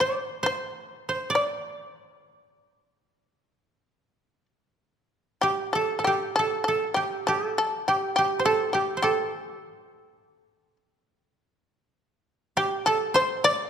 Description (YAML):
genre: japanese traditional, Japanese chamber music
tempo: 67 BPM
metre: 4/4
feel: uneven beats, rubato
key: unclear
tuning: A4 = 437 Hz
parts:
  - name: shamisen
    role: melody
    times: 0.0-13.7 s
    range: G4 to D5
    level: -26 LUFS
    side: left 2 dB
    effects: none
  - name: koto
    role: second line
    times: 0.0-13.7 s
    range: G4 to D5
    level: -26 LUFS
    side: right 4 dB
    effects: none
room: moderate concert hall reverb, RT60 2.0 s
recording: minimal, uncompressed stereo recording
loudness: -23 LUFS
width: side -8 dB against mid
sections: 0.0-5.4 A section; 5.4-13.7 B section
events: none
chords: none